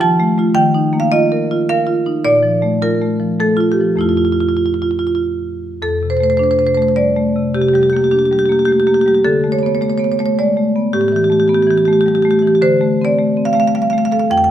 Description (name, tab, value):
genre	classical, contemporary piece for solo marimba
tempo	106 BPM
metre	3/4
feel	rubato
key	F major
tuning	A4 = 435 Hz
part	marimba with medium hard mallets	solo	0.0-14.5 s	F2 to A5	-12 LUFS	equal	none
room	moderate stone room reverb, RT60 1.3 s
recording	none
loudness	-12 LUFS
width	side -11 dB against mid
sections	0.0-5.8 A section; 5.8-14.5 B section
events	none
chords	0.0 F; 0.6 Ebsus2; 2.2 Bbmaj7; 4.0 Fmaj7; 5.8 F6; 7.5 Csus2; 9.2 D5; 10.9 Asus2; 12.6 Dm7